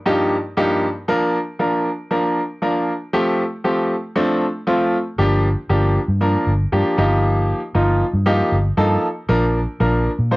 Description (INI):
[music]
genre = dance-pop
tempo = 117 BPM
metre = 4/4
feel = straight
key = unclear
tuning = A4 = 440 Hz
[part]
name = bright concert grand piano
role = accompaniment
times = 0.1-10.4 s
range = G2 to C5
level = -18 LUFS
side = equal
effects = cassette tape
[part]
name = vintage muted fingered electric bass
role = bass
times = 5.2-10.4 s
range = G1 to Bb2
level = -18 LUFS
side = equal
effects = none
[sound]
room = light reverb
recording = home recording on cassette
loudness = -16 LUFS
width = side -21 dB against mid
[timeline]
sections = 0.0-10.4 A section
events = none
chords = 0.0 Ebadd9/G; 1.1 Bb; 3.1 Fadd9; 5.2 Gm7; 7.0 Ebadd9/G; 9.3 Bb